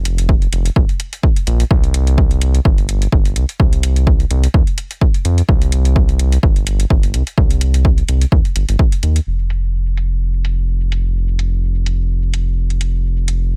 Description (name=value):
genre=dub techno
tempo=127 BPM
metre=4/4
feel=swing 55% on 16ths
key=unclear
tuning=A4 = 440 Hz
part: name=round analog bass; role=bass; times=0.0-13.6 s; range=F1 to F2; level=-17 LUFS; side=equal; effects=sidechain pumping
part: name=electronic hi-hat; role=drums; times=0.1-13.4 s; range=none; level=-29 LUFS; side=equal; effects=low-pass filter on hats
part: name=electronic kick drum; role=drums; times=0.3-8.9 s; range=none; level=-16 LUFS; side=equal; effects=none
room=digital ambience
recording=none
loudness=-15 LUFS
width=mono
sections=0.0-9.3 A section; 9.3-13.6 B section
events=none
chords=none